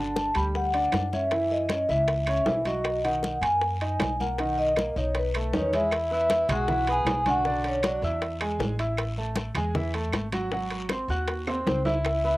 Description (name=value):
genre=Afro-Cuban jazz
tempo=157 BPM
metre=4/4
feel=straight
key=B major, E major from 5.9 s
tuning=A4 = 440 Hz
part: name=vibraphone with medium mallets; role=melody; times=0.0-8.2, 11.7-12.4 s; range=B4 to B5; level=-26 LUFS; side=equal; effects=cassette tape, plate reverb
part: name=warm concert grand piano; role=accompaniment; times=0.0-12.4 s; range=D3 to F#6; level=-31 LUFS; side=right 1 dB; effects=cassette tape, plate reverb
part: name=upright bass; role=bass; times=0.0-12.4 s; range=G1 to F#2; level=-31 LUFS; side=equal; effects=none
part: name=bongos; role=percussion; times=0.2-12.2 s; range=none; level=-33 LUFS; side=left 4 dB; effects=none
part: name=congas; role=percussion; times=0.2-12.4 s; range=none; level=-35 LUFS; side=left 1 dB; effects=none
part: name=guiro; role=percussion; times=0.2-12.4 s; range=none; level=-44 LUFS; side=left 3 dB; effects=none
part: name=timbales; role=percussion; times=0.2-12.2 s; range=none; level=-33 LUFS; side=right 2 dB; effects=none
part: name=claves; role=percussion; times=0.3-12.2 s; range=none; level=-38 LUFS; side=right 3 dB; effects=none
part: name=clear tenor saxophone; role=second line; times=5.5-8.2, 11.7-12.4 s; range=B#3 to G#4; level=-35 LUFS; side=left 1 dB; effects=cassette tape, plate reverb
room=moderate booth ambience, RT60 0.2 s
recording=home recording on cassette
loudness=-24 LUFS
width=side -18 dB against mid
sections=0.0-5.9 A section; 5.9-12.4 B section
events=drum fill 11.5-12.0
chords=0.0 G5; 1.3 F#5; 2.9 B6; 5.9 E; 7.5 Bm; 8.2 E; 9.0 A5; 10.5 G#7